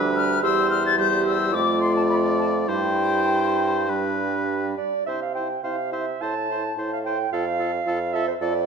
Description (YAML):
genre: quick classical-period movement for wind quintet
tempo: 99-112 BPM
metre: 4/4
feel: rubato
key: C major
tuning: A4 = 436 Hz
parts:
  - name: warm oboe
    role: second line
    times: 0.0-8.5 s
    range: A4 to D5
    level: -28 LUFS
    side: left 2 dB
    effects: none
  - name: mellow French horn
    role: accompaniment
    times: 0.0-8.5 s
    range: G3 to F4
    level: -30 LUFS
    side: right 1 dB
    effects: none
  - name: mellow clarinet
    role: accompaniment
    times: 0.0-8.7 s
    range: D4 to A5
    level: -26 LUFS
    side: right 7 dB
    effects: none
  - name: warm bassoon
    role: bass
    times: 0.0-8.7 s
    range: D2 to C3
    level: -27 LUFS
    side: right 2 dB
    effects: none
  - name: mellow concert flute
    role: melody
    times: 0.2-8.7 s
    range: C5 to A6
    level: -27 LUFS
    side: left 8 dB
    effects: none
room: moderate recital hall reverb, RT60 1.4 s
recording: none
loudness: -20 LUFS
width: side -6 dB against mid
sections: 0.0-5.1 A section; 5.1-8.7 B section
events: none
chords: 0.4 C/E; 1.5 Dm/F; 2.7 C/G; 3.9 G; 5.1 C; 6.2 Am; 7.3 F